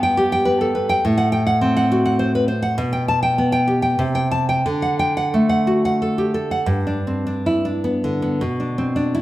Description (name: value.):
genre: romantic piece for solo classical guitar.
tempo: 88-108 BPM.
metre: 3/4.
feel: rubato.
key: G major.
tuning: A4 = 440 Hz.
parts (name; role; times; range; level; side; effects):
nylon-string guitar; solo; 0.0-9.2 s; G2 to A5; -17 LUFS; equal; none.
room: wet recital hall reverb, RT60 1.6 s.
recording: recorded in a church or concert hall.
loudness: -17 LUFS.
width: side -15 dB against mid.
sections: 0.0-6.7 A section; 6.7-9.2 B section.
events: none.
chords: 0.0 G; 1.0 Am6; 2.8 G/B; 4.0 Am7/C; 4.7 D; 6.7 G; 8.4 G/B (rootless).